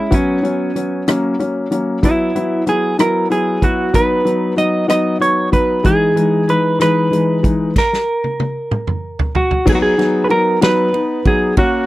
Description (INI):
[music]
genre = six-eight pop ballad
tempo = 63 BPM (dotted quarters)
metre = 6/8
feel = straight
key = B major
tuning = A4 = 440 Hz
[part]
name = clean electric guitar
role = melody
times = 0.0-11.9 s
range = C#4 to D#5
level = -17 LUFS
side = right 2 dB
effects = none
[part]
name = felt-muted upright piano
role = accompaniment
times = 0.0-11.8 s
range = E3 to F#4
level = -16 LUFS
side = left 2 dB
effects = none
[part]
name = natural country drum kit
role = drums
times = 0.1-11.7 s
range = crash cymbal, hi-hat, kick drum, ride cymbal, rim click, snare drum, toms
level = -18 LUFS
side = equal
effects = none
[sound]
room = light reverb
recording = dry, close 1970s-style studio recording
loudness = -13 LUFS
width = side -17 dB against mid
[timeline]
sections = 0.0-9.7 A section; 9.7-11.9 B section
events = drum fill 7.8-9.7; stop 7.8-9.7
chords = 0.1 F#sus4; 1.1 F#; 2.0 Esus2; 3.9 B; 5.8 Emaj7; 7.8 N.C.; 9.7 B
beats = | 0.12 1.08 | 2.03 2.98 | 3.94 4.89 | 5.85 6.80 | 7.76 8.71 | 9.66 10.62 | 11.57